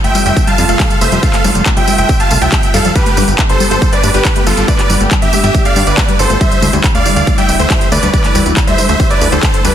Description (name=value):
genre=uplifting trance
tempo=139 BPM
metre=4/4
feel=straight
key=G mixolydian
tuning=A4 = 436 Hz
part: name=supersaw chords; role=melody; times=0.0-9.7 s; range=D4 to A5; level=-15 LUFS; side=right 1 dB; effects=sidechain pumping, ping-pong delay
part: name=clear baby grand piano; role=second line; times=0.0-9.7 s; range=A4 to A5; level=-22 LUFS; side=equal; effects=sidechain pumping, digital delay
part: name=lush unison pad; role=sustained chords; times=0.0-9.7 s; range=C3 to G4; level=-21 LUFS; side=equal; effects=chorus, phaser, sidechain pumping
part: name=wide unison pluck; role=arpeggios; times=0.0-9.7 s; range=G3 to A3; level=-20 LUFS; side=left 4 dB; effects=sidechain pumping, digital delay
part: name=fat analog bass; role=bass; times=0.0-9.7 s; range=D1 to G2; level=-16 LUFS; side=equal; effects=sidechain pumping
part: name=big-room dance drum kit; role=drums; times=0.0-9.7 s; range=congas, handclaps, hi-hat, tambourine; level=-17 LUFS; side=equal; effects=studio reverb
part: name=electronic kick drum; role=drums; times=0.4-9.5 s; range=none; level=-14 LUFS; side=equal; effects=studio reverb
room=light reverb, digital ambience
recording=dense, heavily limited modern master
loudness=-9 LUFS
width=side -10 dB against mid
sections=0.0-9.7 A section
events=none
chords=0.0 F; 3.0 G; 6.4 Dsus2